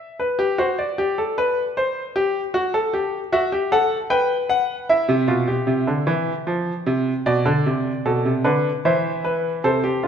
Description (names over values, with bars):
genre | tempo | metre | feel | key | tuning
classical, baroque-style 3-part fugue for grand piano | 76 BPM | 3/4 | straight | C major | A4 = 440 Hz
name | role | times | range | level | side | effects
clear baby grand piano | solo | 0.0-10.1 s | B2 to G5 | -19 LUFS | equal | none
room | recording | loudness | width
moderate scoring stage reverb, RT60 1.9 s | recorded in a church or concert hall | -19 LUFS | side -8 dB against mid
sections
0.0-9.6 A section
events
none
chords
0.2 G; 1.8 C5; 2.5 D/F#; 4.1 G/B; 4.9 C; 6.5 F5; 7.3 G/B; 8.8 C/E